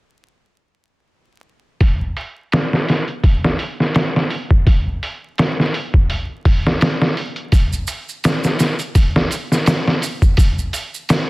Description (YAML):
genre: trip hop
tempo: 84 BPM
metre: 4/4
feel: swing 55% on 16ths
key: none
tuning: none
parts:
  - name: trip hop sampler-style drum kit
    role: drums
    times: 1.8-11.3 s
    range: hi-hat, kick drum, snare drum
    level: -15 LUFS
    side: equal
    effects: low-pass filter on hats, low-pass filter on kick, low-pass filter on snare
  - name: maracas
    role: percussion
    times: 7.5-11.3 s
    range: none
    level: -30 LUFS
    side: right 5 dB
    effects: none
room: digital ambience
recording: dense, heavily limited modern master, vinyl crackle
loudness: -15 LUFS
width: side -22 dB against mid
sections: 1.8-11.3 A section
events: none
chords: none